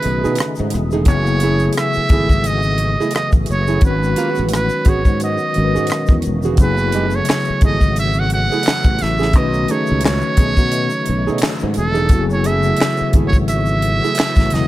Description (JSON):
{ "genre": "R&B, neo-soul", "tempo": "87 BPM", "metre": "4/4", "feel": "swing 57% on 16ths", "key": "F# dorian", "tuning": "A4 = 440 Hz", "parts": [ { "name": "trumpet with metal mute", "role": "melody", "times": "0.0-14.7 s", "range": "A4 to F#5", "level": "-21 LUFS", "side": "right 3 dB", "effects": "none" }, { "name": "mellow tine electric piano", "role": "accompaniment", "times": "0.0-14.7 s", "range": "C#3 to B4", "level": "-22 LUFS", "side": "left 3 dB", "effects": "fast stereo tremolo" }, { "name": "percussive tonewheel organ", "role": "sustained chords", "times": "0.0-14.7 s", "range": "C#3 to G#4", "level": "-28 LUFS", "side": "left 1 dB", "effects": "slow rotary speaker, overdrive, chorus vibrato" }, { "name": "tight funk drum kit", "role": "drums", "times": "0.0-14.7 s", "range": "handclaps, hi-hat, kick drum, rim click, snare drum", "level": "-15 LUFS", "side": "equal", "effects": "none" }, { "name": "sustaining fretless electric bass", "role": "bass", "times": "0.1-14.7 s", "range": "E1 to B2", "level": "-19 LUFS", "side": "equal", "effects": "analog chorus" }, { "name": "nylon-string guitar", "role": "second line", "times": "0.2-14.2 s", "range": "A3 to G#4", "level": "-24 LUFS", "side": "right 5 dB", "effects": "none" }, { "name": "egg shaker and finger snaps", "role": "percussion", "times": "0.2-14.7 s", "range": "none", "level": "-34 LUFS", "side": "left 6 dB", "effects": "none" } ], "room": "small room reverb", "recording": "none", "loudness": "-14 LUFS", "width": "side -15 dB against mid", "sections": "0.0-14.7 A section", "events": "none", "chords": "0.0 B13; 1.1 F#m9; 3.8 G#m7; 6.6 F#m9; 9.3 B13; 12.1 F#m9", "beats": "0.37 | 1.06 1.75 2.44 3.13 | 3.82 4.51 5.20 5.89 | 6.58 7.27 7.96 8.65 | 9.34 10.03 10.72 11.41 | 12.10 12.79 13.48 14.17" }